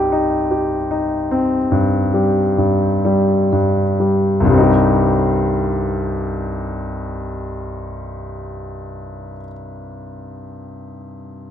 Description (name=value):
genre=classical, romantic nocturne for solo piano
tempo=20-26 BPM (dotted quarters)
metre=9/8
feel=rubato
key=C minor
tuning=A4 = 438 Hz
part: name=clear grand piano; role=solo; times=0.0-11.5 s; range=C2 to C5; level=-16 LUFS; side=left 1 dB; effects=none
room=wet recital hall reverb, RT60 1.5 s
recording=close, detailed microphones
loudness=-15 LUFS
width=side -9 dB against mid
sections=0.0-4.4 A section; 4.4-11.5 B section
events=slowing down 0.0-4.4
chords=0.0 Cm